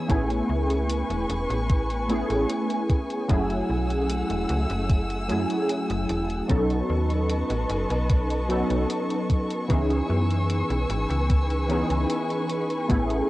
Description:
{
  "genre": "vaporwave",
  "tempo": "75 BPM",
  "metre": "4/4",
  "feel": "straight",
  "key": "C# minor",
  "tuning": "A4 = 440 Hz",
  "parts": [
    { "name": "warbly lo-fi synth keys", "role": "accompaniment", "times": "0.0-13.3 s", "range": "E3 to A4", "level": "-26 LUFS", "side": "equal", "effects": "ensemble chorus, tape echo" },
    { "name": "dark studio string section", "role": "sustained chords", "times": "0.0-13.3 s", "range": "A3 to E6", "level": "-31 LUFS", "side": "equal", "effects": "none" },
    { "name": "slap-like FM bass", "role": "bass", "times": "0.1-13.2 s", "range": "E1 to F#2", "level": "-27 LUFS", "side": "equal", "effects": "tube saturation" },
    { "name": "electronic hi-hat", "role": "drums", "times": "0.1-13.3 s", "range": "none", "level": "-39 LUFS", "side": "equal", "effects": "vintage 12-bit sampler grit, cassette tape" },
    { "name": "electronic kick drum", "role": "drums", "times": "0.1-13.1 s", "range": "none", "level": "-22 LUFS", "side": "equal", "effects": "vintage 12-bit sampler grit, cassette tape" }
  ],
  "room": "moderate booth ambience, RT60 0.2 s",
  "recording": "home recording on cassette",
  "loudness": "-22 LUFS",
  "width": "side -17 dB against mid",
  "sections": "0.0-13.3 A section",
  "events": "none",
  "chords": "0.1 Amaj9; 3.3 F#m9; 6.5 B9; 9.7 C#m7"
}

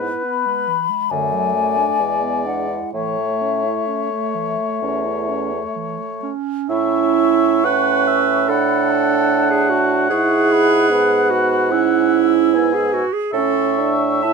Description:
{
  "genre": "classical, slow romantic movement for wind quintet",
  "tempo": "61-76 BPM",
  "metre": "4/4",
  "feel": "rubato",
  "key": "A major",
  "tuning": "A4 = 441 Hz",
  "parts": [
    { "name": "warm oboe", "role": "second line", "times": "0.0-14.3 s", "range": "B4 to G#5", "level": "-23 LUFS", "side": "left 3 dB", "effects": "none" },
    { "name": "clear clarinet", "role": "accompaniment", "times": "0.0-14.3 s", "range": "D3 to E5", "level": "-20 LUFS", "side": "right 8 dB", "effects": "none" },
    { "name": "warm French horn", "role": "accompaniment", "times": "0.0-14.3 s", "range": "G#3 to E4", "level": "-23 LUFS", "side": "right 3 dB", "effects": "none" },
    { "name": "clear bassoon", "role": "bass", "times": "0.0-14.3 s", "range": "E2 to A2", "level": "-23 LUFS", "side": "right 3 dB", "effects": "none" },
    { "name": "mellow hollow concert flute", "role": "melody", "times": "0.2-14.3 s", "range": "E5 to E6", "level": "-23 LUFS", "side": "left 10 dB", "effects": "none" }
  ],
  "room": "moderate studio ambience, RT60 0.5 s",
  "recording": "minimal, uncompressed stereo recording",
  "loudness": "-15 LUFS",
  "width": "side -4 dB against mid",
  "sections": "0.0-6.7 A section; 6.7-14.3 A section",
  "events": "none",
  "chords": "0.0 E/G#; 1.1 D/F#; 2.0 E9; 2.9 A; 8.5 Bm7/A; 10.1 E/G#; 13.3 A"
}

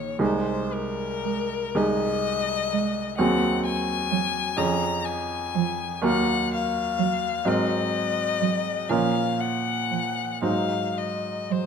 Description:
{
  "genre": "classical, slow romantic movement for piano trio",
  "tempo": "41 BPM (dotted quarters)",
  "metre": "6/8",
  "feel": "uneven beats, rubato",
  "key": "Ab major",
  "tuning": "A4 = 440 Hz",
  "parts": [
    { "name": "rich violin", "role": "melody", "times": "0.0-11.7 s", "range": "Bb4 to Bb5", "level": "-27 LUFS", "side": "left 9 dB", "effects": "none" },
    { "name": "warm cello", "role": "second line", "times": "0.0-11.7 s", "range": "F3 to Ab3", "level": "-29 LUFS", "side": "right 9 dB", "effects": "none" },
    { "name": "bright baby grand piano", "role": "accompaniment", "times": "0.0-11.7 s", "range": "Bb1 to C5", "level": "-25 LUFS", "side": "right 2 dB", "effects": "none" }
  ],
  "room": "moderate recital hall reverb, RT60 1.5 s",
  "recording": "none",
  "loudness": "-23 LUFS",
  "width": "side -6 dB against mid",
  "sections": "0.0-11.7 A section",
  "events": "none",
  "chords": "0.2 Ab/C; 3.2 Ab7/Eb; 4.6 Db/F; 6.0 Ebm; 7.5 Ab9; 8.9 Bbm; 10.4 Ab7"
}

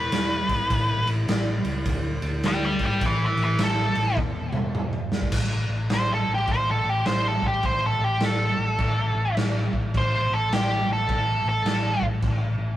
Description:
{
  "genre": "blues rock power trio and southern rock",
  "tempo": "104 BPM",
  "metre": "4/4",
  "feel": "swing 63% on 8ths",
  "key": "A minor",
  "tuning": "A4 = 440 Hz",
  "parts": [
    { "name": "octave-fuzz lead guitar", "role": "melody", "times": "0.0-12.0 s", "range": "G4 to G5", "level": "-25 LUFS", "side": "equal", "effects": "distortion, digital delay" },
    { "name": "hollow-body short-scale picked electric bass", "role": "bass", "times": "0.0-12.8 s", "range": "E1 to D2", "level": "-27 LUFS", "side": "left 1 dB", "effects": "none" },
    { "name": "raw garage drum kit", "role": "drums", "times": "0.1-12.4 s", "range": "crash cymbal, kick drum, ride cymbal, snare drum, toms", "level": "-26 LUFS", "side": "right 1 dB", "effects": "none" }
  ],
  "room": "light reverb",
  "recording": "rough rehearsal-room recording",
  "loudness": "-21 LUFS",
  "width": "side -13 dB against mid",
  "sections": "0.0-5.3 A section; 5.3-12.8 A section",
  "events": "lead electric guitar solo 0.0-5.3, 5.3-12.8; drum fill 4.2-5.3",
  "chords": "0.0 E; 0.7 A; 1.9 G5; 3.0 Asus2; 4.2 N.C."
}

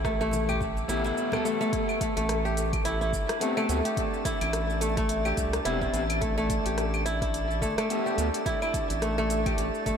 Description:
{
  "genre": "organic downtempo",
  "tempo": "107 BPM",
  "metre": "4/4",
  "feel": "swing 57% on 16ths",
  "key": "unclear",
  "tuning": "A4 = 439 Hz",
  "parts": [
    { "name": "kora", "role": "arpeggios", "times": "0.0-10.0 s", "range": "A3 to G4", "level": "-28 LUFS", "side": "equal", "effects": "tape echo" },
    { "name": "round analog bass", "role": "bass", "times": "0.0-10.0 s", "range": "E1 to D2", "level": "-31 LUFS", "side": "equal", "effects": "sidechain pumping" },
    { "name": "deep house drum kit", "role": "drums", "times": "0.0-10.0 s", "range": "claves, hi-hat, rim click, shaker", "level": "-35 LUFS", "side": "left 1 dB", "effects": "overdrive" },
    { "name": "electronic kick drum", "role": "drums", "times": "0.0-10.0 s", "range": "none", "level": "-33 LUFS", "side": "equal", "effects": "overdrive" },
    { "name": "congas", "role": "percussion", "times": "0.2-1.4 s", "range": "none", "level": "-43 LUFS", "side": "left 2 dB", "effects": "none" },
    { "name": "electric guitar at the edge of break-up", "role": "accompaniment", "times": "0.9-8.3 s", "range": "A3 to A4", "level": "-34 LUFS", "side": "left 2 dB", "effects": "vintage 12-bit sampler grit, sidechain pumping, tape echo" },
    { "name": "drifting glass-harmonics texture", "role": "texture", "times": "3.1-10.0 s", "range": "D4 to D5", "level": "-38 LUFS", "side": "equal", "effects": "chorus, built-in reverb" }
  ],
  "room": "moderate huge ambient reverb, RT60 7.7 s",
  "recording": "dreamy mix soaked in reverb",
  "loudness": "-25 LUFS",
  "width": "side -7 dB against mid",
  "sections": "0.0-1.7 A section; 1.7-10.0 B section",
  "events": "none",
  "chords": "0.0 Gadd9; 1.7 Am7; 6.2 Gsus2"
}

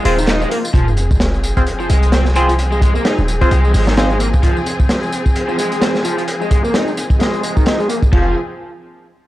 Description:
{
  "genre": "breakbeat, breaks",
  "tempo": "130 BPM",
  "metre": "4/4",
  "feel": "swing 57% on 16ths",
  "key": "unclear",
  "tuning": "A4 = 437 Hz",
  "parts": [
    { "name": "rich studio string section", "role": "sustained chords", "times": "0.0-8.3 s", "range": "F3 to Ab4", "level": "-23 LUFS", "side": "left 1 dB", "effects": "vintage 12-bit sampler grit, sidechain pumping" },
    { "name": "raw garage guitar", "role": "riff", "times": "0.0-8.3 s", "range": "Eb3 to Eb4", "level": "-20 LUFS", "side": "equal", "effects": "overdrive, vintage 12-bit sampler grit, low-pass filter, analog delay" },
    { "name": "band-passed chord stab", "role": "stabs", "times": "0.1-4.1 s", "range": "C4 to C5", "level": "-20 LUFS", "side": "equal", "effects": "phaser, analog delay" },
    { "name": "warm 808-style bass", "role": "bass", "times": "0.1-4.4, 8.1-8.3 s", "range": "Eb1 to C2", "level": "-16 LUFS", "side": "equal", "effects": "none" },
    { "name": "crunchy breakbeat drum kit", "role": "drums", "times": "0.1-8.2 s", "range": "hi-hat, kick drum, ride cymbal, snare drum", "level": "-16 LUFS", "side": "equal", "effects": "none" },
    { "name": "punchy analog drum machine", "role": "drums", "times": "0.1-8.1 s", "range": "handclaps, hi-hat, tambourine", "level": "-31 LUFS", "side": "equal", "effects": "none" },
    { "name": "sub drop", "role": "sound effects", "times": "0.7-2.6 s", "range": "none", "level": "-22 LUFS", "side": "equal", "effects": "none" }
  ],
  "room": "small room ambience",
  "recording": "dry, gritty hardware recording, cassette tape",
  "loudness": "-13 LUFS",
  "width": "side -15 dB against mid",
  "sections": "0.7-8.1 A section; 8.1-9.3 B section",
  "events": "break 0.0-0.7; impact 0.7-2.6; filter sweep on overdriven electric guitar 0.7-8.1",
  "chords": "0.0 Fm"
}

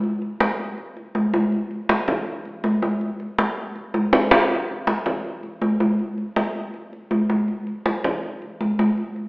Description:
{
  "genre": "latin",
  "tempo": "161 BPM",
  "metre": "4/4",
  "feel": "straight",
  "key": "none",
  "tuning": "none",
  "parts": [
    { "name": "congas", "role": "percussion", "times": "0.0-9.3 s", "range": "none", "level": "-20 LUFS", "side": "equal", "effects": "none" }
  ],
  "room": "wet recital hall reverb, RT60 1.4 s",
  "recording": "recorded in a church or concert hall, telephone sound",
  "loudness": "-20 LUFS",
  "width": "side -26 dB against mid",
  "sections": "0.0-4.5 A section; 4.5-9.3 B section",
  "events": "drum fill 3.9-4.5",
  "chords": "none"
}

